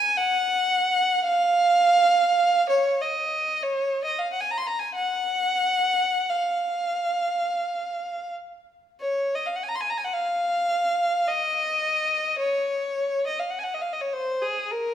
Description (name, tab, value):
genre	classical, free, expressive piece for unaccompanied violin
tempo	37-56 BPM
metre	3/4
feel	rubato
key	unclear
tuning	A4 = 439 Hz
part	rich violin	solo	0.0-14.9 s	Ab4 to C6	-22 LUFS	equal	none
room	moderate recital hall reverb, RT60 1.7 s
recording	minimal, uncompressed stereo recording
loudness	-22 LUFS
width	side -10 dB against mid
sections	0.0-9.0 A section; 9.0-14.9 B section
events	none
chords	none